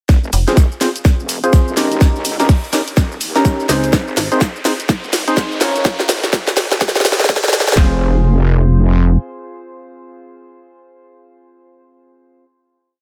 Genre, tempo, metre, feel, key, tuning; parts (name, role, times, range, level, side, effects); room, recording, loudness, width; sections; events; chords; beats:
bass house; 125 BPM; 4/4; swing 61% on 16ths; F minor; A4 = 439 Hz
wobble bass; bass; 0.1-9.2 s; Eb1 to Eb2; -20 LUFS; equal; chorus, overdrive, sidechain pumping, high-pass filter
big rock drum kit; drums; 0.1-5.8 s; hi-hat, shaker, snare drum; -34 LUFS; equal
garage drum kit; drums; 0.1-7.9 s; handclaps, kick drum, snare drum; -14 LUFS; equal
garage drum kit; drums; 0.1-7.8 s; hi-hat, shaker, snare drum; -20 LUFS; equal
riser; sound effects; 2.3-7.8 s; -31 LUFS; equal
metallic FM bass; bass; 0.3-0.5, 3.7-4.3 s; F1 to Db2; -20 LUFS; equal; overdrive, sidechain pumping
percussive organ stab; stabs; 0.5-12.4 s; C4 to Db5; -22 LUFS; equal; lush chorus, sidechain pumping, dub echo
light reverb, studio ambience; high-pass filter; -15 LUFS; mono
0.1-7.8 build; 7.8-11.6 final chord
build-up 0.1-7.8; drum fill 0.1-7.8; filter sweep 0.1-7.8
0.1 Fm; 2.0 Eb7; 3.9 Ab; 5.8 Bbm; 7.8 Fm
| 0.09 0.57 1.05 1.53 | 2.01 2.49 2.97 3.45 | 3.93 4.41 4.89 5.37 | 5.85 6.33 6.81 7.29 | 7.77 8.25 8.73 9.21 | 9.69 10.17 10.65 11.13